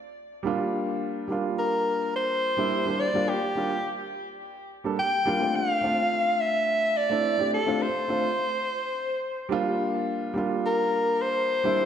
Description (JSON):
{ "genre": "chillout", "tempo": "106 BPM", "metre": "4/4", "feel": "swing 54% on 16ths", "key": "G dorian", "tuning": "A4 = 440 Hz", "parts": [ { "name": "dark baby grand piano", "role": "accompaniment", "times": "0.4-11.9 s", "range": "G3 to A4", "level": "-28 LUFS", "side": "moving between left 4 dB and right 5 dB", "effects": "auto-pan, tape echo" }, { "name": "mellow soprano saxophone", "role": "melody", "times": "1.6-11.9 s", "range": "G4 to G5", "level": "-25 LUFS", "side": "left 1 dB", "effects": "tape echo" } ], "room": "wet recital hall reverb, RT60 1.4 s", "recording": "none", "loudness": "-24 LUFS", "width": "side -8 dB against mid", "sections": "0.0-11.9 A section", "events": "none", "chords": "0.0 G9sus4" }